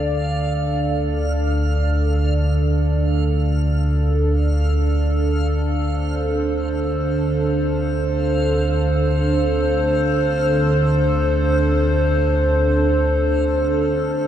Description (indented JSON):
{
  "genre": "dark ambient drone",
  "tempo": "free time",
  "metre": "none",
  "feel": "none",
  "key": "D minor",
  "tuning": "A4 = 441 Hz",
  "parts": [
    { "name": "dark analog pad", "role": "sustained chords", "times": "0.0-14.3 s", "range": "D4 to D5", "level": "-20 LUFS", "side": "right 1 dB", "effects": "chorus" },
    { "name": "analog drone", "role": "drone", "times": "0.0-14.3 s", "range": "D2 to D3", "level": "-19 LUFS", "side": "equal", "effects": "chorus" },
    { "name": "backwards swelling texture", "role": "texture", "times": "0.0-14.3 s", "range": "F5", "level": "-33 LUFS", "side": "right 1 dB", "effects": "built-in reverb" }
  ],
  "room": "wet cathedral reverb, RT60 6.1 s",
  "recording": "cassette tape",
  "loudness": "-17 LUFS",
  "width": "side -10 dB against mid",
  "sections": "0.0-14.3 A section",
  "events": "fade-out on synth texture 0.0-14.3",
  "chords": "0.0 D5"
}